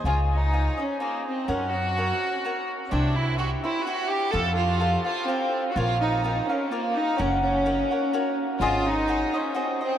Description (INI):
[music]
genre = mexican folk, mariachi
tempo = 126 BPM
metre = 3/4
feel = swing 53% on 8ths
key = Db major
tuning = A4 = 441 Hz
[part]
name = cavaquinho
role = accompaniment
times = 0.0-10.0 s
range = E4 to Gb5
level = -29 LUFS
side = left 1 dB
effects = none
[part]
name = upright bass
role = bass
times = 0.0-9.2 s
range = Gb1 to Gb2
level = -26 LUFS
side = equal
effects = none
[part]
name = clear chamber violin section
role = melody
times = 0.1-10.0 s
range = Bb3 to A4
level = -25 LUFS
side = right 1 dB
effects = none
[sound]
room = wet huge ambient reverb, RT60 9.3 s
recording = in a vast, echoing space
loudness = -22 LUFS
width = side -10 dB against mid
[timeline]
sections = 0.1-10.0 A section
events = none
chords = 0.1 Dbadd9; 1.5 Gb; 2.9 C; 4.3 F; 5.8 Bbm; 7.2 Gb; 8.6 Ab7